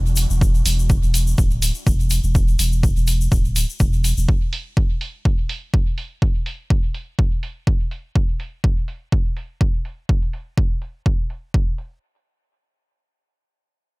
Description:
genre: dub techno.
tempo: 124 BPM.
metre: 4/4.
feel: swing 54% on 16ths.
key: unclear.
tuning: A4 = 440 Hz.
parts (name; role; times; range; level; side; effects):
pure sine sub bass; bass; 0.0-4.3 s; D1 to E1; -19 LUFS; equal; sidechain pumping.
egg shaker; percussion; 0.1-4.3 s; none; -28 LUFS; left 5 dB; none.
electronic hi-hat; drums; 0.2-11.9 s; none; -28 LUFS; right 4 dB; low-pass filter on snare, low-pass filter on hats.
electronic kick drum; drums; 0.4-11.6 s; none; -18 LUFS; equal; none.
room: little or no reverb.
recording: none.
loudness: -18 LUFS.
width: side -26 dB against mid.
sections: 0.0-12.0 A section.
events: filter sweep on drum 0.0-12.0.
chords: none.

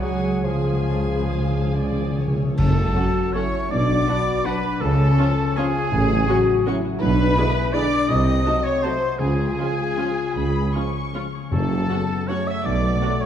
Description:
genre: classical, orchestral ballroom waltz.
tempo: 133-179 BPM.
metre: 3/4.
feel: rubato.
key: F# minor.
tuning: A4 = 440 Hz.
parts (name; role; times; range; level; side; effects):
muted chamber violin section; melody; 0.0-13.1 s; F#5 to C#6; -37 LUFS; left 4 dB; none.
bright silver concert flute; second line; 0.0-13.3 s; E#5 to E6; -32 LUFS; left 1 dB; none.
muted chamber violin section; second line; 0.0-13.3 s; G#4 to E#5; -28 LUFS; left 1 dB; none.
muted studio viola section; accompaniment; 0.0-13.1 s; C#4 to A4; -32 LUFS; equal; none.
warm bassoon; accompaniment; 0.0-2.2 s; E#3 to F#3; -31 LUFS; right 1 dB; none.
mellow French horn section; sustained chords; 0.0-13.3 s; A3 to C#5; -26 LUFS; left 4 dB; none.
concert harp; arpeggios; 0.0-13.3 s; F#2 to G#5; -30 LUFS; left 6 dB; none.
muted chamber cello section; bass; 0.0-13.0 s; F#2 to F#3; -26 LUFS; right 2 dB; none.
muted chamber double bass section; bass; 0.0-13.0 s; F#1 to C#2; -27 LUFS; right 2 dB; none.
timpani; percussion; 0.0-3.1, 9.2-12.1 s; F#2 to C#3; -25 LUFS; left 1 dB; none.
warm oboe; second line; 2.6-13.3 s; G#4 to E5; -29 LUFS; right 1 dB; none.
mellow tuba; bass; 2.6-13.0 s; F#1 to C#2; -29 LUFS; right 3 dB; none.
clash cymbals and concert bass drum; percussion; 2.6-3.3 s; none; -30 LUFS; equal; none.
bright trombone section; sustained chords; 3.0-13.2 s; B2 to D4; -34 LUFS; right 3 dB; none.
room: wet scoring stage reverb, RT60 2.1 s.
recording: dark, warm production.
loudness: -18 LUFS.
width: side -9 dB against mid.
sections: 0.0-2.6 A section; 2.6-13.3 B section.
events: timpani fill 0.0-2.6; band accent 2.6-3.0.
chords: 0.0 C#; 2.6 F#m; 3.7 Bm; 4.8 C#; 5.9 F#m/A; 7.0 G#dim/B; 8.1 Cdim7; 9.2 C#; 11.5 F#m; 12.7 Bm.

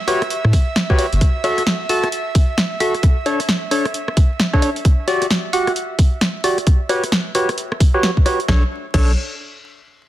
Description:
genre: UK garage, two-step garage.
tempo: 132 BPM.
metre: 4/4.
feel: swing 62% on 16ths.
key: B minor.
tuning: A4 = 436 Hz.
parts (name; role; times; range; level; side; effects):
airy breathy pad; sustained chords; 0.0-8.5 s; E5; -30 LUFS; right 4 dB; chorus, sidechain pumping.
percussive organ stab; stabs; 0.1-9.1 s; D4 to A5; -20 LUFS; equal; chorus, ping-pong delay.
punchy analog drum machine; drums; 0.1-9.1 s; bongos, crash cymbal, hi-hat, rim click, snare drum; -21 LUFS; equal; none.
soft dub sub bass; bass; 0.4-1.2, 8.5-9.2 s; G1 to A2; -16 LUFS; equal; tube saturation.
electronic kick drum; drums; 0.5-9.1 s; none; -14 LUFS; equal; none.
room: light reverb, digital ambience.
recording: dense, heavily limited modern master, vinyl crackle.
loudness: -15 LUFS.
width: side -14 dB against mid.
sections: 0.0-8.5 A section; 8.5-10.1 B section.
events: filter sweep on synth stab 0.0-8.5.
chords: 0.0 A13 (rootless); 1.2 F#m7; 3.0 Aadd11/D; 4.8 Em9; 6.7 Em69/F#; 8.5 Bm9.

